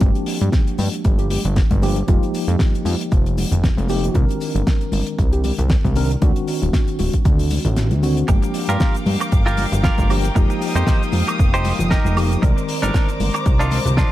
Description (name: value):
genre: nu-disco, nu disco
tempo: 116 BPM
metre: 4/4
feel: swing 55% on 16ths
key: G minor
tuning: A4 = 440 Hz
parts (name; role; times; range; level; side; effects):
- soft octave-layered synth lead; melody; 0.0-8.3 s; C4 to G4; -31 LUFS; left 2 dB; chorus, analog delay
- mellow tine electric piano; accompaniment; 0.0-14.1 s; Eb3 to D5; -25 LUFS; equal; medium stereo tremolo, sidechain pumping, diffuse ambient delay
- fat analog bass; bass; 0.0-14.0 s; D1 to G2; -19 LUFS; equal; none
- damped 70s drum kit; drums; 0.0-14.1 s; cabasa, hi-hat, snare drum, woodblock; -27 LUFS; left 1 dB; studio reverb
- electronic kick drum; drums; 0.0-14.1 s; none; -17 LUFS; equal; studio reverb
- congas and maracas; percussion; 0.0-14.1 s; none; -29 LUFS; left 4 dB; none
- clear chamber violin section; sustained chords; 8.3-14.1 s; Bb4 to Eb6; -28 LUFS; left 2 dB; sidechain pumping
- direct-recorded clean electric guitar; riff; 8.3-14.1 s; D4 to C5; -25 LUFS; right 2 dB; lush chorus, diffuse ambient delay
room: light reverb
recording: none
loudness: -16 LUFS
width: side -14 dB against mid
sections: 0.0-14.1 A section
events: kick drops out 7.8-8.3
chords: 0.0 Gm7; 2.1 F9sus4; 4.2 Cm9; 6.2 D7b9; 8.3 Gm7; 10.4 F9sus4; 12.4 Cm9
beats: | 0.01 0.53 1.05 1.56 | 2.08 2.60 3.12 3.63 | 4.15 4.67 5.18 5.70 | 6.22 6.74 7.25 7.77 | 8.29 8.81 9.32 9.84 | 10.36 10.88 11.39 11.91 | 12.43 12.94 13.46 13.98